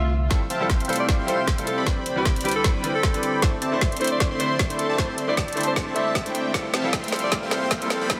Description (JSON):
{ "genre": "future bass", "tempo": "154 BPM", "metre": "4/4", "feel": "swing 56% on 16ths, half-time", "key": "unclear", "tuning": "A4 = 440 Hz", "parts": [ { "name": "clear alto saxophone", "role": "melody", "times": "0.0-8.1 s", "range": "G4 to E5", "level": "-31 LUFS", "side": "equal", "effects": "sidechain pumping, tape echo" }, { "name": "bright concert grand piano", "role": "accompaniment", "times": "0.0-8.2 s", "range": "E3 to C5", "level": "-31 LUFS", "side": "equal", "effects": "sidechain pumping" }, { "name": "airy breathy pad", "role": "sustained chords", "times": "0.0-8.2 s", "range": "C2 to E5", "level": "-39 LUFS", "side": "equal", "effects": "chorus, phaser, sidechain pumping" }, { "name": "swell and riser", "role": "sound effects", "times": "0.0-8.2 s", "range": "none", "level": "-40 LUFS", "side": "equal", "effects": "none" }, { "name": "big bright polysynth", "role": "riff", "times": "0.3-8.2 s", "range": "C4 to C6", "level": "-30 LUFS", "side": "equal", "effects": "phaser, cassette tape, sidechain pumping" }, { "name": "electronic kick drum", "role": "drums", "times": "0.3-8.2 s", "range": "none", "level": "-27 LUFS", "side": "equal", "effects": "small room ambience" }, { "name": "trap drum kit", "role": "drums", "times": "0.3-8.2 s", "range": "hi-hat, snare drum", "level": "-29 LUFS", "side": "equal", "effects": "soft clipping on snare, small room ambience" } ], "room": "moderate lush hall reverb, RT60 2.0 s", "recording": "dense, heavily limited modern master, high-pass filter", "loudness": "-23 LUFS", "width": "mono", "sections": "0.3-8.2 A section", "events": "swell 0.0-0.3; build-up 0.3-8.2; drum fill 0.3-8.2; filter sweep 0.3-8.2", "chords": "0.3 Fmaj9/C; 1.9 Em7/C; 3.4 C69; 6.5 Fmaj9/C", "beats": "| 0.31 0.70 1.09 1.48 | 1.87 2.26 2.65 3.04 | 3.42 3.81 4.20 4.59 | 4.98 5.37 5.76 6.15 | 6.54 6.93 7.32 7.71 | 8.10" }